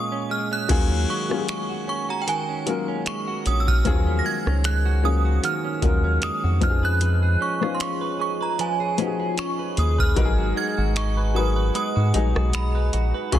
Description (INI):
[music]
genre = contemporary R&B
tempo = 76 BPM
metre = 4/4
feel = swing 54% on 16ths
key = Eb minor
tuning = A4 = 442 Hz
[part]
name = synth chime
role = melody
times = 0.0-13.4 s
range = G5 to Bb6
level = -27 LUFS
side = right 3 dB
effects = ensemble chorus, phaser, ping-pong delay
[part]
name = dark baby grand piano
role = accompaniment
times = 0.0-13.4 s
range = F3 to Cb5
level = -28 LUFS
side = left 8 dB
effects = none
[part]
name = direct-recorded clean electric guitar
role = arpeggios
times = 0.0-13.4 s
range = Bb2 to Cb5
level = -30 LUFS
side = right 7 dB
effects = analog chorus
[part]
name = rubbery square bass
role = bass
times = 0.7-13.4 s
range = Ab1 to Ab2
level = -21 LUFS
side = equal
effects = none
[part]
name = booming analog drum machine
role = drums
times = 0.7-13.4 s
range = crash cymbal, finger snaps, hi-hat, kick drum, rim click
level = -25 LUFS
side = equal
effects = soft clipping on snare
[part]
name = chorused pulse-width pad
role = sustained chords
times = 7.0-13.4 s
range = F4 to Ab5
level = -33 LUFS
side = left 2 dB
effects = sidechain pumping
[sound]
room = little or no reverb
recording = dense, heavily limited modern master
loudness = -20 LUFS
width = side -11 dB against mid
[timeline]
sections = 0.7-13.3 A section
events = break 0.0-0.7; kick muted 11.7-13.3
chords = 0.0 Bbm7; 0.7 Ebm11; 6.6 Db7/F; 10.2 Abm7